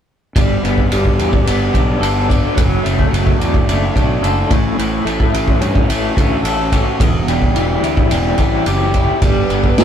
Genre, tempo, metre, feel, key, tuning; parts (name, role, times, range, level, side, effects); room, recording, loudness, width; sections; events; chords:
psychedelic rock; 108 BPM; 4/4; straight; A4 = 440 Hz
crunchy overdriven guitar; riff; 0.4-9.8 s; E2 to A4; -17 LUFS; left 1 dB; tremolo
fuzz fingered electric bass; bass; 0.4-9.8 s; E1 to G2; -19 LUFS; equal; overdrive
vintage drum kit; drums; 0.4-9.8 s; kick drum, ride cymbal, snare drum; -16 LUFS; equal
clear symphonic string section; sustained chords; 9.2-9.8 s; B4 to A5; -24 LUFS; right 2 dB
wet booth ambience, RT60 0.2 s; rough rehearsal-room recording; -12 LUFS; side -9 dB against mid
0.4-9.8 A section
0.4 Gadd9; 2.6 D/F#; 4.5 A; 7.0 Em; 9.2 Gadd9